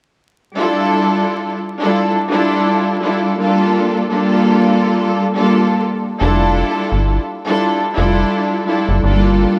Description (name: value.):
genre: hip hop, boom-bap hip-hop.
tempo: 85 BPM.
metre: 4/4.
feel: swing 58% on 16ths.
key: unclear.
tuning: A4 = 439 Hz.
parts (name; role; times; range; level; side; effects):
warm studio string section; accompaniment; 0.6-9.6 s; G3 to A4; -16 LUFS; equal; high-pass filter, low-pass filter.
metallic FM bass; bass; 6.2-9.5 s; F1 to G1; -18 LUFS; equal; none.
room: wet plate reverb, RT60 3.1 s.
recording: dreamy mix soaked in reverb, vinyl crackle.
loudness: -16 LUFS.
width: mono.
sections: 0.6-9.6 A section.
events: none.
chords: 0.6 Fmaj13; 3.4 Gm9; 6.2 Fmaj13; 9.0 Gm9.